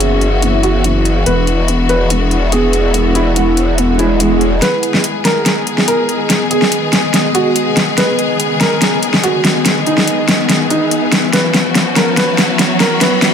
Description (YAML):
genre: heavy wobble dubstep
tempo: 143 BPM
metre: 4/4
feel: half-time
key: G# minor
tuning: A4 = 441 Hz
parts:
  - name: felt-muted upright piano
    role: melody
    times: 0.0-13.3 s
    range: D#4 to B4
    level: -18 LUFS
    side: right 2 dB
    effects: ping-pong delay
  - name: clear symphonic string section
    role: sustained chords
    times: 0.0-13.3 s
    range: D#3 to G#4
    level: -19 LUFS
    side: left 3 dB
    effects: none
  - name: growl bass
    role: bass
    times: 0.0-4.6 s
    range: E1 to F#1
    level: -14 LUFS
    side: equal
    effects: chorus, overdrive
  - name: dubstep drum kit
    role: drums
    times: 0.0-13.3 s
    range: hi-hat, snare drum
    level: -14 LUFS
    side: equal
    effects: overdrive
  - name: ethereal airy pad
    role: texture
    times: 0.0-13.3 s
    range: B3 to F#5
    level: -20 LUFS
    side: left 1 dB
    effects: ensemble chorus, built-in reverb
  - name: swell and riser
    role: sound effects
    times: 3.9-13.3 s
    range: none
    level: -21 LUFS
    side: right 2 dB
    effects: none
room: light reverb, digital ambience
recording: high-pass filter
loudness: -11 LUFS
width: side -7 dB against mid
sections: 0.0-4.6 A section; 4.6-13.3 B section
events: swell 3.9-4.6; build-up 4.6-13.3; drum fill 4.6-13.3; riser 6.4-13.3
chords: 0.0 F#7sus4; 1.3 Eadd9; 4.6 G#m; 11.3 F#7sus4